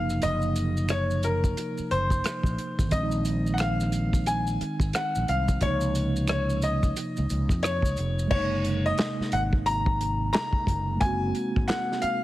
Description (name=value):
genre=R&B, neo-soul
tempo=89 BPM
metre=4/4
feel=swing 62% on 16ths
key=unclear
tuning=A4 = 440 Hz
part: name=clear grand piano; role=melody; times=0.0-12.2 s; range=Bb4 to Bb5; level=-29 LUFS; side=left 2 dB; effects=slapback echo
part: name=mellow tine electric piano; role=accompaniment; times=0.0-12.2 s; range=C3 to Gb4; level=-31 LUFS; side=right 2 dB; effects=medium stereo tremolo
part: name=fretless electric bass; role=bass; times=0.0-12.1 s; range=F1 to F2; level=-28 LUFS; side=equal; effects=none
part: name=warm soul drum kit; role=drums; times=0.1-12.2 s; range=crash cymbal, handclaps, hi-hat, kick drum, rim click, snare drum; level=-28 LUFS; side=equal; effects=none
part: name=maracas and finger snaps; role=percussion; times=0.1-8.3 s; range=none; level=-41 LUFS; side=right 2 dB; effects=none
room=light reverb, studio reverb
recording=heavily compressed radio sound, multiband compression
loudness=-24 LUFS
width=side -15 dB against mid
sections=0.0-8.3 A section; 8.3-12.2 B section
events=none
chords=0.0 Gbmaj13; 2.9 Bb9sus4; 5.6 Db69; 8.3 Gb69